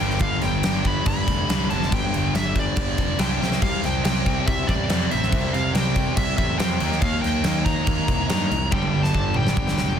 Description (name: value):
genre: hard rock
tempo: 141 BPM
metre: 4/4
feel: straight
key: unclear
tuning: A4 = 440 Hz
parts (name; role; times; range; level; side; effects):
- smooth overdriven lead guitar; melody; 0.0-10.0 s; D5 to B5; -27 LUFS; equal; slapback echo
- heavy high-gain guitar; riff; 0.0-10.0 s; G2 to Eb4; -30 LUFS; left 14 dB; distortion
- overdriven electric guitar; riff; 0.0-10.0 s; G2 to Eb4; -31 LUFS; left 1 dB; spring reverb
- sludgy distorted guitar; riff; 0.0-10.0 s; G2 to Eb4; -30 LUFS; right 11 dB; overdrive
- fuzz picked electric bass; bass; 0.0-10.0 s; F1 to G2; -26 LUFS; equal; overdrive
- huge arena drum kit; drums; 0.1-9.9 s; crash cymbal, kick drum, snare drum, toms; -23 LUFS; equal; none
room: little or no reverb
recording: dense, heavily limited modern master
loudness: -19 LUFS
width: side -8 dB against mid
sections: 0.0-10.0 A section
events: drum fill 3.4, 8.7-10.0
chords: 0.0 G; 3.4 C; 6.8 Eb; 8.7 G5